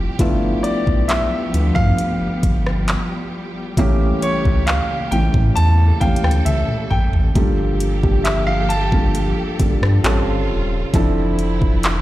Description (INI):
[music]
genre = contemporary R&B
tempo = 67 BPM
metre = 4/4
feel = straight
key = unclear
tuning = A4 = 439 Hz
[part]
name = felt-muted upright piano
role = accompaniment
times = 0.0-12.0 s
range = E3 to A4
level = -22 LUFS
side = equal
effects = none
[part]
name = warm studio string section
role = sustained chords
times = 0.0-12.0 s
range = Bb2 to A4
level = -27 LUFS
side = equal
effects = sidechain pumping
[part]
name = warm sub bass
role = bass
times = 0.0-12.0 s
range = Eb1 to A2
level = -18 LUFS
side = equal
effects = none
[part]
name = smooth R&B drum kit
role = drums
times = 0.2-12.0 s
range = handclaps, hi-hat, kick drum, rim click, toms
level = -19 LUFS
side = equal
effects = none
[part]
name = warm concert grand piano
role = melody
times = 0.6-10.4 s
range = C#5 to A5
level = -24 LUFS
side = equal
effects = digital delay
[sound]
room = small room ambience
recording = played on a big sound system in a bare room, large studio reverb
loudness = -15 LUFS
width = side -15 dB against mid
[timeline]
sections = 0.0-7.4 A section; 7.4-12.0 B section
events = drum fill 6.5-7.4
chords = 0.2 G13; 3.8 A7b9; 7.4 Gm9; 10.0 A7alt; 10.9 Dm9/F